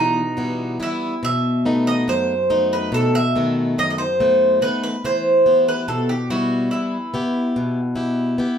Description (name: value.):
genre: greek folk.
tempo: 142 BPM (eighths).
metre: 9/8.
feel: straight.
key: E harmonic minor.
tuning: A4 = 440 Hz.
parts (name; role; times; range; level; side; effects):
Greek bouzouki; melody; 0.0-8.3 s; D#4 to E5; -19 LUFS; right 1 dB; none.
picked plugged-in swing-style acoustic guitar; accompaniment; 0.0-8.6 s; F#2 to G4; -21 LUFS; left 1 dB; none.
room: wet studio reverb, RT60 0.5 s.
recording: heard from further back in the room.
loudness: -17 LUFS.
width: side -8 dB against mid.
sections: 0.0-8.6 A section.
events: speeding up 0.0-8.6.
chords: 0.0 Em; 1.2 B7; 5.0 Em.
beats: 0.37 0.80 | 1.23 1.65 2.08 2.50 2.92 3.35 3.77 4.19 4.61 | 5.03 5.45 5.87 6.29 6.71 7.12 7.54 7.95 8.37.